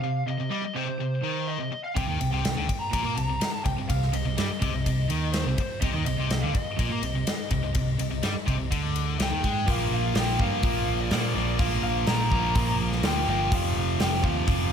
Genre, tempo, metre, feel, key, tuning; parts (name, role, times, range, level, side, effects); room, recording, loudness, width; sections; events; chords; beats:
hard rock; 124 BPM; 4/4; straight; C minor; A4 = 440 Hz
lead guitar through a small cranked amp; melody; 0.0-14.7 s; C5 to Bb5; -32 LUFS; left 2 dB; overdrive, slapback echo, plate reverb
overdriven semi-hollow guitar; riff; 0.0-14.7 s; F2 to Bb3; -31 LUFS; right 10 dB
tight distorted guitar; riff; 0.0-14.7 s; F2 to Bb3; -31 LUFS; left 10 dB; distortion
picked electric bass; bass; 2.0-14.7 s; F1 to Bb2; -29 LUFS; equal
big rock drum kit; drums; 2.0-14.6 s; hi-hat, kick drum, ride cymbal, snare drum; -28 LUFS; equal
light reverb; -24 LUFS; side -8 dB against mid
0.0-9.7 A section; 9.7-14.7 B section
0.0 Cm; 9.7 Bb5; 13.5 F5
| 0.03 0.51 1.00 1.48 | 1.96 2.44 2.93 3.41 | 3.89 4.38 4.86 5.34 | 5.82 6.30 6.79 7.27 | 7.75 8.23 8.71 9.19 | 9.67 10.15 10.63 11.11 | 11.59 12.07 12.55 13.03 | 13.51 13.99 14.47